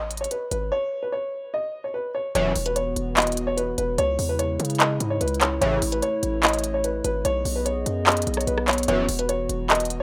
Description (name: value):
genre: hip hop, trap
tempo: 147 BPM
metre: 4/4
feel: half-time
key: E major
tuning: A4 = 437 Hz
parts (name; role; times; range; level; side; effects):
- dark baby grand piano; melody; 0.0-10.0 s; B4 to D#5; -28 LUFS; equal; low-pass filter
- hard-hitting 808-style bass; bass; 0.0-10.0 s; E1 to C#3; -31 LUFS; equal; none
- trap drum kit; drums; 0.1-10.0 s; handclaps, hi-hat, rim click; -26 LUFS; equal; none
- dark analog pad; sustained chords; 2.4-10.0 s; C#3 to D#5; -32 LUFS; equal; subtle chorus
- sync-sweep polysynth; stabs; 2.4-2.5, 5.6-5.8, 8.9-9.1 s; F#2 to E3; -28 LUFS; equal; chorus, phaser
room: digital ambience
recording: rough home demo mix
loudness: -24 LUFS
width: mono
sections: 0.0-2.4 A section; 2.4-10.0 B section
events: none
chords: 0.0 N.C.; 2.4 Esus2; 4.0 C#m; 5.6 A; 7.2 B6; 8.9 Esus2